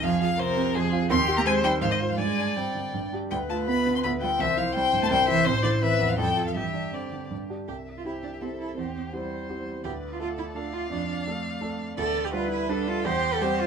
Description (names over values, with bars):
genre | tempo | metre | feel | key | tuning
quick classical-period movement for piano quartet | 167 BPM | 3/4 | rubato | C major from 3.3 s | A4 = 440 Hz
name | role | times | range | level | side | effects
rich violin | melody | 0.0-13.7 s | B4 to C6 | -28 LUFS | left 5 dB | none
rich violin | second line | 0.0-13.7 s | G4 to F5 | -31 LUFS | left 4 dB | none
warm cello | second line | 0.0-13.7 s | C3 to C5 | -30 LUFS | right 6 dB | none
warm concert grand piano | accompaniment | 0.0-13.7 s | A1 to C5 | -29 LUFS | right 2 dB | none
room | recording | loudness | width
moderate studio reverb, RT60 0.5 s | minimal, uncompressed stereo recording | -24 LUFS | side -6 dB against mid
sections
0.0-7.7 A section; 7.7-13.7 B section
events
none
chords
0.0 Fm; 1.1 Cm/Eb; 1.8 Fm/Ab; 2.2 Gsus4; 2.9 G5; 3.3 G9/D; 4.4 C; 5.5 Am; 6.2 F; 6.6 Gsus4; 7.3 G5; 7.7 C; 8.8 C/E; 9.8 Dm; 10.9 Dm/F; 12.0 G/D; 13.1 C/E